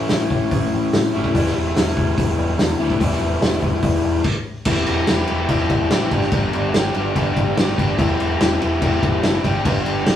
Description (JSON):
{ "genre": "classic rock", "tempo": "144 BPM", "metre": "4/4", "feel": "straight", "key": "E dorian", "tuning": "A4 = 440 Hz", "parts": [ { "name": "overdriven electric guitar", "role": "riff", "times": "0.0-10.2 s", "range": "A2 to G4", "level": "-20 LUFS", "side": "left 1 dB", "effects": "none" }, { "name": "growling fingered electric bass", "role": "bass", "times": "0.0-10.2 s", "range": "E1 to A2", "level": "-24 LUFS", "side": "equal", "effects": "overdrive" }, { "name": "vintage drum kit", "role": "drums", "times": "0.1-10.2 s", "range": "crash cymbal, hi-hat, kick drum, snare drum", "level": "-20 LUFS", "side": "equal", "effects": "none" } ], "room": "moderate stone room reverb, RT60 1.1 s", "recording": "rough rehearsal-room recording, small room ambience", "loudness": "-16 LUFS", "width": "side -10 dB against mid", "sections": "0.0-4.7 A section; 4.7-10.2 B section", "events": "stop 4.2-4.7", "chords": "0.0 A; 1.3 Em; 6.1 G; 8.0 Em; 9.4 G" }